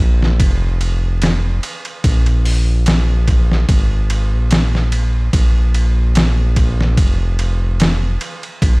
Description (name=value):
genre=trip hop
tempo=73 BPM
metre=4/4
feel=swing 54% on 16ths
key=unclear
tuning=A4 = 439 Hz
part: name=round analog bass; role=bass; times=0.0-8.8 s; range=F1 to Bb1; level=-14 LUFS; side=equal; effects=transformer saturation
part: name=trip hop sampler-style drum kit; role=drums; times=0.2-8.8 s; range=hi-hat, kick drum, ride cymbal, snare drum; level=-17 LUFS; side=equal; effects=overdrive, studio reverb
room=little or no reverb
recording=dry, gritty hardware recording, vinyl crackle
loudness=-13 LUFS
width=side -29 dB against mid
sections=0.0-8.8 A section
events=none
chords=none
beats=0.40 1.22 | 2.04 2.86 3.69 4.51 | 5.33 6.15 6.97 7.79 | 8.62